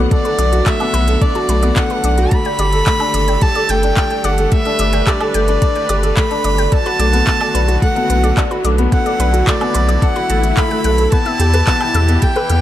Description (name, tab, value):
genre	piano and strings electronica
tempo	109 BPM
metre	4/4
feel	straight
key	B minor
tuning	A4 = 440 Hz
part	clear symphonic string section	sustained chords	0.0-12.6 s	B2 to F#5	-25 LUFS	right 2 dB	sidechain pumping
part	analog pluck	arpeggios	0.0-12.6 s	A4 to B5	-27 LUFS	left 3 dB	chorus, sidechain pumping, digital delay
part	felt-muted upright piano	riff	0.0-12.6 s	A3 to D5	-19 LUFS	left 1 dB	digital delay
part	round analog bass	bass	0.0-12.6 s	G1 to E2	-15 LUFS	equal	sidechain pumping
part	warm violin	melody	0.1-12.6 s	D5 to B5	-19 LUFS	equal	none
part	electronic kick drum	drums	0.1-12.3 s	none	-16 LUFS	equal	none
part	organic electronic drum kit	drums	0.1-12.6 s	handclaps, hi-hat, woodblock	-23 LUFS	right 1 dB	none
part	swell	sound effects	10.2-11.1 s	none	-25 LUFS	left 4 dB	none
room	little or no reverb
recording	none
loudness	-12 LUFS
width	side -12 dB against mid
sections	0.0-12.6 A section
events	swell 10.2-11.1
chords	0.0 Bm7; 2.3 Gsus2; 6.7 Bm7; 11.1 Em